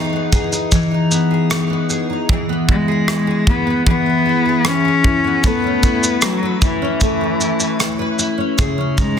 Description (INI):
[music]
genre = acoustic pop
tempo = 76 BPM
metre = 4/4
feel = straight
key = E major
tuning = A4 = 440 Hz
[part]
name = picked steel-string acoustic guitar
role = accompaniment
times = 0.0-9.2 s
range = C#3 to B4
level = -18 LUFS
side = left 1 dB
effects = double-tracked left and right
[part]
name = modern studio drum kit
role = drums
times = 0.3-9.2 s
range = kick drum, rim click, shaker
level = -18 LUFS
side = equal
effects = soft clipping on kick, soft clipping on snare
[part]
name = warm cello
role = melody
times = 2.7-9.2 s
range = E3 to C#4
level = -18 LUFS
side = left 3 dB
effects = none
[sound]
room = light reverb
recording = dense, heavily limited modern master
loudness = -14 LUFS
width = side -8 dB against mid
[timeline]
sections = 0.0-2.3 A section; 2.3-9.2 B section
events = none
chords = 0.0 Emaj7; 2.3 E; 5.4 Aadd9; 8.6 C#sus2